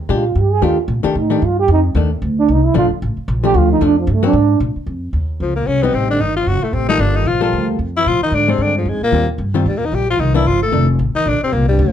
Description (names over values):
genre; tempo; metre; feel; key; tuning
jazz, small-group swing and bop; 226 BPM; 4/4; swing 58% on 8ths; Bb major; A4 = 441 Hz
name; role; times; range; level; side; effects
upright bass; bass; 0.0-11.9 s; F1 to Bb2; -17 LUFS; equal; none
breathy trombone; second line; 0.1-11.9 s; F2 to Ab4; -19 LUFS; right 6 dB; none
hollow-body jazz guitar; accompaniment; 0.1-10.9 s; Eb3 to A4; -20 LUFS; left 6 dB; none
growling tenor saxophone; melody; 5.4-11.9 s; F3 to A4; -17 LUFS; left 4 dB; none
room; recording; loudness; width
moderate club reverb, RT60 0.7 s; dark, warm production; -13 LUFS; side -9 dB against mid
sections
0.0-4.9 A section; 4.9-11.9 B section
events
trombone solo 0.0-4.9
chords
0.1 Bb6; 0.6 Ebmaj7#11; 1.7 F6; 2.8 Bbmaj7; 4.3 Absus2; 4.9 Dbmaj9; 5.9 Am7b5; 6.5 F#dim7; 7.0 Gm9; 8.1 Bb9; 9.1 Eb69; 10.2 Cm9; 10.7 F6; 11.3 Bb69